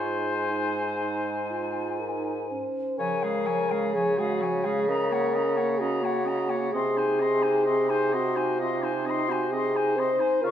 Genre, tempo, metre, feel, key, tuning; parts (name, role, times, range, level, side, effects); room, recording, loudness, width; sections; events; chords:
classical, slow romantic movement for wind quintet; 58-66 BPM; 4/4; rubato; A4 = 440 Hz
concert flute; melody; 0.0-10.5 s; F5 to Db6; -32 LUFS; left 6 dB
warm oboe; second line; 0.0-10.5 s; Ab4 to F5; -33 LUFS; left 1 dB
mellow French horn; accompaniment; 0.0-10.5 s; Ab3 to C5; -27 LUFS; left 2 dB
warm clarinet; accompaniment; 0.0-10.5 s; F3 to F4; -34 LUFS; right 8 dB
mellow bassoon; bass; 0.0-10.5 s; Ab2 to Db3; -30 LUFS; right 2 dB
wet recital hall reverb, RT60 1.7 s; -24 LUFS; side -10 dB against mid
0.0-3.0 A section; 3.0-10.5 B section
0.0 Ab; 3.0 Db; 4.9 Ebm7/Db; 6.7 Ab/C